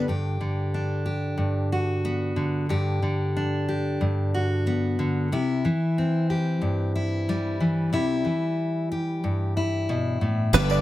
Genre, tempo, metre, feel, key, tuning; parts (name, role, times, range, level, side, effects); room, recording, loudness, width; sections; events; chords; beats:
indie folk with a building arrangement; 92 BPM; 4/4; straight; G major; A4 = 439 Hz
fingerpicked steel-string acoustic guitar; accompaniment; 0.0-10.5 s; G2 to G4; -23 LUFS; equal
picked twelve-string acoustic guitar; accompaniment; 0.0-0.1, 10.5-10.8 s; G2 to B4; -25 LUFS; left 3 dB
open-back banjo; arpeggios; 0.0-0.1, 10.5-10.8 s; B4 to D5; -26 LUFS; right 8 dB
warm upright piano; accompaniment; 10.5-10.8 s; G1 to D5; -28 LUFS; right 6 dB
fingered electric bass; bass; 10.5-10.8 s; G1; -22 LUFS; right 1 dB
tambourine; percussion; 10.5-10.8 s; -41 LUFS; right 8 dB
light reverb; -23 LUFS; side -15 dB against mid
0.1-10.5 A section
0.1 G; 5.3 C
| 0.07 0.72 1.38 2.03 | 2.68 3.34 4.00 4.65 | 5.31 5.96 6.62 7.27 | 7.93 8.58 9.23 9.89 | 10.54